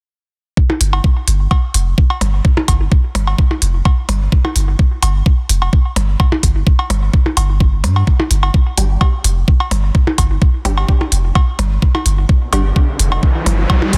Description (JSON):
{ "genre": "minimal techno", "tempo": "128 BPM", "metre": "4/4", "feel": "straight", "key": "unclear", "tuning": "A4 = 440 Hz", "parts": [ { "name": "electronic kick drum", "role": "drums", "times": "0.6-14.0 s", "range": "none", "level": "-14 LUFS", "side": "equal", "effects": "none" }, { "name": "percussion blips and cowbell", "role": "percussion", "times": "0.7-13.9 s", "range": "none", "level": "-24 LUFS", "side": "equal", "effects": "tape echo" }, { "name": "punchy sub bass", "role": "bass", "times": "0.8-14.0 s", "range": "F1 to G2", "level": "-17 LUFS", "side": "equal", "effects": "sidechain pumping" }, { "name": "electronic hi-hat", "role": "drums", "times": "0.8-14.0 s", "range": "none", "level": "-21 LUFS", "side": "equal", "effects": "none" }, { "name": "filtered dub chord stab", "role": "stabs", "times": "8.8-12.6 s", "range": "G3 to G4", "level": "-28 LUFS", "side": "equal", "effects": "phaser, ensemble chorus, tape echo" }, { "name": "riser", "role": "sound effects", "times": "12.5-14.0 s", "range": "none", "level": "-24 LUFS", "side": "equal", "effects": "none" } ], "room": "digital ambience", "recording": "dense, heavily limited modern master", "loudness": "-14 LUFS", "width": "mono", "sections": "0.6-14.0 A section", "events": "riser 12.5-14.0", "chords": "0.6 G5", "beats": "| 0.57 1.04 1.51 1.98 | 2.45 2.92 3.38 3.85 | 4.32 4.79 5.26 5.73 | 6.20 6.67 7.13 7.60 | 8.07 8.54 9.01 9.48 | 9.95 10.42 10.88 11.35 | 11.82 12.29 12.76 13.23 | 13.70" }